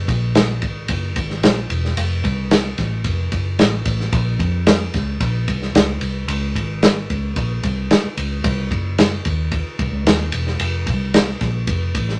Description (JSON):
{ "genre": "uptempo 1960s-style soul", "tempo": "111 BPM", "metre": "4/4", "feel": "straight", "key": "unclear", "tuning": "A4 = 442 Hz", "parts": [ { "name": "vintage muted fingered electric bass", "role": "bass", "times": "0.0-12.2 s", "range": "E1 to F2", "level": "-24 LUFS", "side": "equal", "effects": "none" }, { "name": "vintage drum kit", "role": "drums", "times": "0.1-12.2 s", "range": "kick drum, ride cymbal, snare drum", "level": "-21 LUFS", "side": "equal", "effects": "none" } ], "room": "moderate studio reverb, RT60 0.6 s", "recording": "none", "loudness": "-19 LUFS", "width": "mono", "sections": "0.0-12.2 A section", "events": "none", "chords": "none", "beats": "0.36 0.90 1.44 | 1.98 2.51 3.05 3.59 | 4.13 4.67 5.21 5.75 | 6.29 6.83 7.37 7.90 | 8.44 8.98 9.52 10.06 | 10.60 11.13 11.67" }